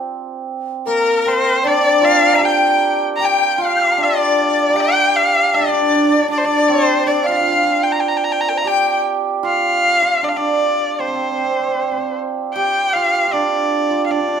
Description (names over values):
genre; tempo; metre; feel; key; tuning
chinese traditional, Chinese chamber ensemble; 77 BPM; 2/4; rubato; G yu mode; A4 = 440 Hz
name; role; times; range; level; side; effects
hammered dulcimer; second line; 0.0-14.4 s; Bb3 to Bb4; -19 LUFS; right 5 dB; none
rich erhu; melody; 0.9-14.4 s; Bb4 to Bb5; -16 LUFS; left 1 dB; none
breathy dizi; second line; 0.9-9.0 s; Bb4 to G6; -18 LUFS; left 7 dB; none
room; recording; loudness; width
moderate recital hall reverb, RT60 1.3 s; minimal, uncompressed stereo recording; -14 LUFS; side -7 dB against mid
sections
0.0-9.4 A section; 9.4-14.4 A section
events
none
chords
none